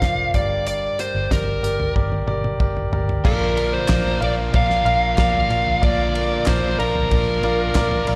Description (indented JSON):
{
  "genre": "piano-driven pop",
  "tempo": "93 BPM",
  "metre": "4/4",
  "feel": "straight",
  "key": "unclear",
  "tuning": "A4 = 440 Hz",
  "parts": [
    { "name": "fuzz lead guitar", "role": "melody", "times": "0.0-8.0 s", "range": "Bb4 to F5", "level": "-24 LUFS", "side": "equal", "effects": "distortion, slapback echo" },
    { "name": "clear concert grand piano", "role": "accompaniment", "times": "0.0-8.2 s", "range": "G2 to F5", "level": "-28 LUFS", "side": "equal", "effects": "plate reverb" },
    { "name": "vintage muted fingered electric bass", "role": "bass", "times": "0.0-8.2 s", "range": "F1 to Bb1", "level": "-26 LUFS", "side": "equal", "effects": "none" },
    { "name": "damped 70s drum kit", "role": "drums", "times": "0.0-8.2 s", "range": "crash cymbal, hi-hat, kick drum, ride cymbal, snare drum, toms", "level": "-25 LUFS", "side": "equal", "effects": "none" },
    { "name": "overdriven electric guitar", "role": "riff", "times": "3.2-8.2 s", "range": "Bb2 to Bb4", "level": "-31 LUFS", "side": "equal", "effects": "slapback echo" },
    { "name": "group handclap", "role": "percussion", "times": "3.9-7.9 s", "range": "none", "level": "-34 LUFS", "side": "equal", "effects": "none" }
  ],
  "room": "light reverb",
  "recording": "live gig heard through the venue's PA, recital hall reverb",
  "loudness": "-20 LUFS",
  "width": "mono",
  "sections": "0.0-3.2 A section; 3.2-8.2 B section",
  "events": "drum fill 2.0-3.2",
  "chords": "0.3 Gm; 3.2 Bb"
}